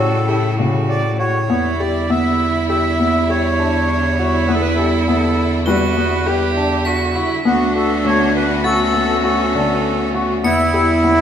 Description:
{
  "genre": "contemporary instrumental, chamber music in an uneven meter",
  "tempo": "101 BPM",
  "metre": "5/4",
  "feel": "straight",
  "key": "E dorian",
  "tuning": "A4 = 439 Hz",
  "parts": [
    { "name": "accordion", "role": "melody", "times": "0.0-11.2 s", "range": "E4 to E5", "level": "-20 LUFS", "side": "equal", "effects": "none" },
    { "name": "clear cello", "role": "second line", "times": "0.0-11.2 s", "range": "B3 to G4", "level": "-22 LUFS", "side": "right 6 dB", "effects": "none" },
    { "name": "clear studio string section", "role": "sustained chords", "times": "0.0-11.2 s", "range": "C#3 to F#4", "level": "-25 LUFS", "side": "left 2 dB", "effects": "none" },
    { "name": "felt-muted upright piano", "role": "arpeggios", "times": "0.0-11.2 s", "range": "C#3 to G4", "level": "-21 LUFS", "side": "left 2 dB", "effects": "none" },
    { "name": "dark bass clarinet", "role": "bass", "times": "0.0-11.2 s", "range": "D2 to A2", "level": "-20 LUFS", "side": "left 1 dB", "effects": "none" },
    { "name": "crotales", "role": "texture", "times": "5.7-11.2 s", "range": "A6 to G7", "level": "-27 LUFS", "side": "left 1 dB", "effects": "none" }
  ],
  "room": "moderate recital hall reverb, RT60 1.2 s",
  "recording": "minimal, uncompressed stereo recording",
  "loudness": "-14 LUFS",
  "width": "side -9 dB against mid",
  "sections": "0.0-11.2 A section",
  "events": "none",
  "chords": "0.0 A7; 1.5 Em7; 7.5 D6; 10.4 Em7"
}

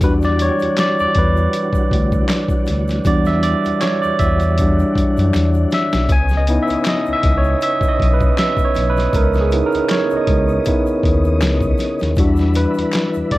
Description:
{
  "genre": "R&B, neo-soul",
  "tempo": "79 BPM",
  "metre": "4/4",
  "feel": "swing 55% on 16ths",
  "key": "unclear",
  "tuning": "A4 = 439 Hz",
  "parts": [
    { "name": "barky tine electric piano", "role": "accompaniment", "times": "0.0-13.4 s", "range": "G3 to G#5", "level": "-18 LUFS", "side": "moving between left 2 dB and right 4 dB", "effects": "overdrive, auto-pan" },
    { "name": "tonewheel organ", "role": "sustained chords", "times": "0.0-13.4 s", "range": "C#3 to D#5", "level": "-24 LUFS", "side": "left 1 dB", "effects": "slow rotary speaker, chorus vibrato" },
    { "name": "smooth synth bass", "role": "bass", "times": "0.0-13.4 s", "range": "B1 to F#2", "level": "-18 LUFS", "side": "left 1 dB", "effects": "none" },
    { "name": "boom bap sampler-style drum kit", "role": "drums", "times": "0.0-13.4 s", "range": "handclaps, hi-hat, kick drum, snare drum", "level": "-19 LUFS", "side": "equal", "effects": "none" },
    { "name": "egg shaker and finger snaps", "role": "percussion", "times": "0.0-13.3 s", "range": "none", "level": "-35 LUFS", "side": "left 3 dB", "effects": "none" }
  ],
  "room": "light reverb",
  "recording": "worn, warbling old tape, cassette tape, warbly pitch drift",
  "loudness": "-14 LUFS",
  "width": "side -17 dB against mid",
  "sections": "0.0-13.4 A section",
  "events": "tine electric piano solo 0.0-13.4; drum fill 5.3-6.1",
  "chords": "0.0 Em9; 6.1 C#m9; 12.2 Em9"
}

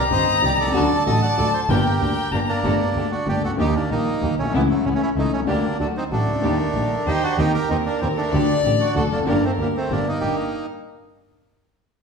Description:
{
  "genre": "tango",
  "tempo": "190 BPM",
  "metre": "3/4",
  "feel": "rubato",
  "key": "G harmonic minor",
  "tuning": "A4 = 439 Hz",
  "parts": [
    { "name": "bandoneon", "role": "melody", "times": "0.0-10.7 s", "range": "E3 to F#5", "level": "-24 LUFS", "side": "right 3 dB", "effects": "none" },
    { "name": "warm violin", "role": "second line", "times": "0.0-2.6, 6.4-10.4 s", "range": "A4 to Bb5", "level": "-24 LUFS", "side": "left 3 dB", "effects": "none" },
    { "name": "dark baby grand piano", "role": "accompaniment", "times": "0.1-10.4 s", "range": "G1 to G4", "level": "-23 LUFS", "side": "left 2 dB", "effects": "none" },
    { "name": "warm studio string section", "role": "stabs", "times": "0.1-10.4 s", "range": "A3 to Bb4", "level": "-32 LUFS", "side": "right 2 dB", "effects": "none" },
    { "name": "clear double bass", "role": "bass", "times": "0.1-10.4 s", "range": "F1 to Eb2", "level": "-25 LUFS", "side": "right 2 dB", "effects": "none" }
  ],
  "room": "wet large studio reverb, RT60 1.3 s",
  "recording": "band playing live in one room",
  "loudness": "-18 LUFS",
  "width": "side -5 dB against mid",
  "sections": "0.0-2.6 A section; 2.6-10.2 B section",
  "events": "none",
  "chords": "0.0 Cm; 0.7 D; 1.7 Gm; 2.6 Gmadd9; 3.6 Eb; 4.5 A/C#; 5.5 Gm/D; 5.8 D; 6.4 Eb; 7.4 Cm7/Eb; 8.3 Dsus4; 9.0 D; 9.3 Gm"
}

